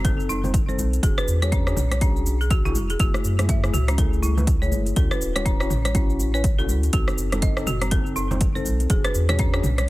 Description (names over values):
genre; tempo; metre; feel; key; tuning
afro house; 122 BPM; 4/4; swing 60% on 16ths; unclear; A4 = 442 Hz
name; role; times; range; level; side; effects
folk marimba with hard mallets; arpeggios; 0.0-9.9 s; C4 to E5; -29 LUFS; equal; sidechain pumping, digital delay
mellow tine electric piano; stabs; 0.0-9.7 s; A3 to C5; -30 LUFS; left 3 dB; fast stereo tremolo, sidechain pumping, digital delay
warm sub bass; bass; 0.0-9.9 s; D1 to F#2; -24 LUFS; equal; tube saturation, sidechain pumping
electronic kick drum; drums; 0.0-9.5 s; none; -22 LUFS; equal; overdrive
house drum kit; drums; 0.0-9.9 s; hi-hat, rim click, shaker, toms; -29 LUFS; equal; overdrive
congas; percussion; 0.0-9.9 s; none; -33 LUFS; right 2 dB; none
room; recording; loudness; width
digital ambience; none; -19 LUFS; side -18 dB against mid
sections
0.0-9.9 A section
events
none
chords
0.0 B7b9; 1.0 E9; 3.0 F#m9; 5.0 Dmaj7; 6.9 B7b9; 8.9 E9